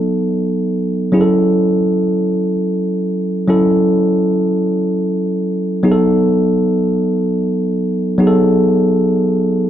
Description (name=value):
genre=R&B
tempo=free time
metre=none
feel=none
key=F# dorian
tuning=A4 = 440 Hz
part: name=tine electric piano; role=solo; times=0.0-9.7 s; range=F#3 to A4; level=-13 LUFS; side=equal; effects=none
room=moderate echo chamber reverb, RT60 1.7 s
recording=dark, warm production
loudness=-13 LUFS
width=side -11 dB against mid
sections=0.0-9.7 A section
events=none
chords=0.0 B7; 1.1 F#m7; 5.8 B7